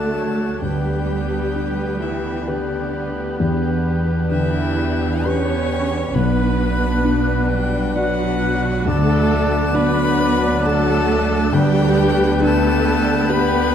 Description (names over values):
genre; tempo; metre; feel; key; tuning
cinematic, emotional film score for orchestra; 66 BPM; 3/4; rubato; unclear; A4 = 440 Hz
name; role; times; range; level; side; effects
clear violin; melody; 0.0-13.7 s; D5 to C#6; -28 LUFS; left 7 dB; none
warm studio violin section; melody; 0.0-13.7 s; F#4 to G4; -33 LUFS; left 2 dB; none
rich studio violin section; second line; 0.0-13.7 s; A3 to D4; -29 LUFS; left 2 dB; none
silver concert flute; second line; 0.0-13.7 s; F#6 to G6; -30 LUFS; equal; none
warm clarinet; second line; 0.0-13.7 s; D4 to A4; -30 LUFS; right 2 dB; none
warm oboe; second line; 0.0-13.7 s; B4 to D5; -29 LUFS; right 1 dB; none
felt-muted upright piano; accompaniment; 0.0-13.7 s; B1 to D5; -23 LUFS; left 1 dB; none
warm studio viola section; accompaniment; 0.0-13.7 s; G3 to C#5; -26 LUFS; right 1 dB; none
mellow French horn section; sustained chords; 0.0-13.7 s; F#3 to G4; -26 LUFS; left 3 dB; none
concert harp; arpeggios; 0.0-13.7 s; B2 to B5; -29 LUFS; left 7 dB; none
rich studio cello section; bass; 0.0-13.7 s; D3 to C#4; -25 LUFS; right 4 dB; none
warm studio double bass section; bass; 0.0-13.7 s; B1 to E2; -25 LUFS; right 4 dB; none
room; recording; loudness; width
moderate concert hall reverb, RT60 1.8 s; dark, warm production; -16 LUFS; side -8 dB against mid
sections
0.0-13.7 A section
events
none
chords
0.0 D; 0.6 G/D; 3.4 Em7; 6.2 Bm; 8.9 D; 11.5 G/D